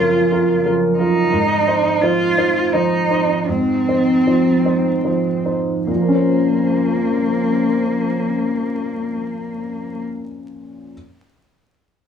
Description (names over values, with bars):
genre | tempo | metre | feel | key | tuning
neoclassical piano and strings | 71-89 BPM | 3/4 | rubato | Bb minor | A4 = 439 Hz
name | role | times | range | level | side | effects
warm cello | second line | 0.0-10.0 s | Bb3 to F4 | -20 LUFS | right 2 dB | none
clear baby grand piano | accompaniment | 0.0-10.9 s | Gb2 to C5 | -18 LUFS | left 1 dB | none
dark analog pad | sustained chords | 0.0-10.0 s | Db3 to C5 | -25 LUFS | right 2 dB | chorus
room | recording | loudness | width
light reverb | vinyl crackle, small room ambience | -15 LUFS | side -7 dB against mid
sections
0.0-5.9 A section; 5.9-10.9 B section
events
slowing down 0.3-5.9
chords
0.0 Gbmaj7; 1.3 Fm7; 5.9 Bbmadd9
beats
0.64 | 1.32 2.01 2.73 | 3.48 4.25 5.05 | 5.88 6.72 7.56 | 8.39 9.23 10.08